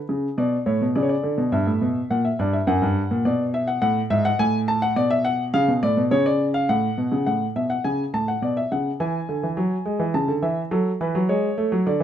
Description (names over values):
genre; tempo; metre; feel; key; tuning
classical, baroque-style two-part invention for grand piano; 104 BPM; 3/4; straight; unclear; A4 = 440 Hz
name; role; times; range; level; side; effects
warm grand piano; solo; 0.0-12.0 s; F#2 to A5; -20 LUFS; equal; none
room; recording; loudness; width
light reverb; minimal, uncompressed stereo recording; -20 LUFS; side -10 dB against mid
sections
0.4-7.3 A section; 7.3-12.0 B section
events
none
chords
0.4 Bm; 1.5 Em/G; 2.1 F#7; 3.2 Bm; 3.8 F#m; 5.0 Bm; 5.5 C#7; 6.7 F#m/A; 8.4 Bm; 9.0 E; 10.1 A/C#; 10.7 F#m